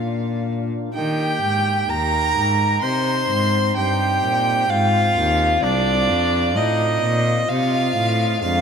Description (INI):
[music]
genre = classical, baroque-style sonata movement with continuo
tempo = 64 BPM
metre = 4/4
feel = straight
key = unclear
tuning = A4 = 439 Hz
[part]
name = clear trumpet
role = melody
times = 0.0-8.6 s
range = D4 to C5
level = -26 LUFS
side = left 6 dB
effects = none
[part]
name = rich violin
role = second line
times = 0.0-8.6 s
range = D5 to C6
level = -20 LUFS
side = right 2 dB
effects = none
[part]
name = pipe organ, flutes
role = accompaniment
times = 0.0-8.6 s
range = C2 to F4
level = -26 LUFS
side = left 2 dB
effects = none
[part]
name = rich cello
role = bass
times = 0.0-8.6 s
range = C2 to Eb3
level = -23 LUFS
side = right 1 dB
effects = none
[sound]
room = wet cathedral reverb, RT60 5.9 s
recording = in a vast, echoing space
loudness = -17 LUFS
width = side -6 dB against mid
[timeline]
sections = 0.0-8.6 A section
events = none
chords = 0.0 Bb; 0.9 Eb; 2.8 Cm; 4.7 Fm; 6.6 F7/A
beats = 0.00 | 0.95 1.89 2.83 3.77 | 4.70 5.63 6.56 7.49 | 8.42